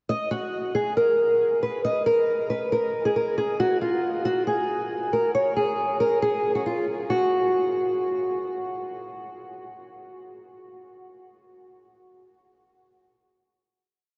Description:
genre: hip hop, trap.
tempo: 137 BPM.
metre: 4/4.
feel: half-time.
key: unclear.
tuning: A4 = 439 Hz.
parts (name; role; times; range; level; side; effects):
fingerpicked old ladder-braced acoustic guitar; solo; 0.1-8.4 s; F4 to Eb5; -25 LUFS; equal; lush chorus, analog delay.
room: wet huge ambient reverb, RT60 7.6 s.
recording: dreamy mix soaked in reverb, nothing above 7.7 kHz.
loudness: -24 LUFS.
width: mono.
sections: 0.1-7.1 breakdown; 7.1-10.6 final note.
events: none.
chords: none.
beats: | 0.09 0.53 0.97 1.41 | 1.84 2.28 2.72 3.16 | 3.60 4.03 4.47 4.91 | 5.35 5.79 6.22 6.66 | 7.10 7.54 7.98.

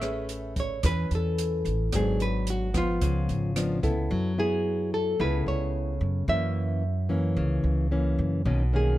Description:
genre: bossa nova.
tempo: 110 BPM.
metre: 4/4.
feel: straight.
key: A major.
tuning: A4 = 440 Hz.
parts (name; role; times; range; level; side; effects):
nylon-string guitar; melody; 0.0-9.0 s; F4 to E5; -30 LUFS; equal; none.
nylon-string guitar; accompaniment; 0.0-9.0 s; F#2 to B4; -29 LUFS; left 2 dB; none.
upright bass; bass; 0.0-9.0 s; G#1 to F#2; -28 LUFS; right 1 dB; none.
open jazz drum kit; drums; 0.0-4.0 s; hi-hat, kick drum, rim click; -32 LUFS; right 1 dB; none.
room: little or no reverb.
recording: close, detailed microphones.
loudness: -24 LUFS.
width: side -15 dB against mid.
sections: 0.0-4.1 A section; 4.1-9.0 B section.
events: none.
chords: 0.0 Amaj9; 1.9 G#m7b5; 3.0 C#7b9; 4.1 F#m11; 6.3 F#7; 8.5 Bmaj9.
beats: 0.29 0.83 1.38 | 1.92 2.47 3.01 3.56 | 4.10 4.65 5.19 5.74 | 6.28 6.83 7.37 7.91 | 8.46.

